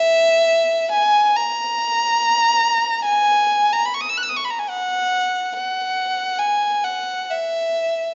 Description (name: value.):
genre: classical, free, expressive piece for unaccompanied violin.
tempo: 62-74 BPM.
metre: 4/4.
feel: rubato.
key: unclear.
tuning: A4 = 441 Hz.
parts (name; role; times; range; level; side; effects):
rich violin; solo; 0.0-8.1 s; E5 to F#6; -19 LUFS; equal; none.
room: moderate recital hall reverb, RT60 1.5 s.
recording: vinyl crackle, nothing above 7.5 kHz.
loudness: -19 LUFS.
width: mono.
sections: 0.0-8.1 A section.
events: none.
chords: none.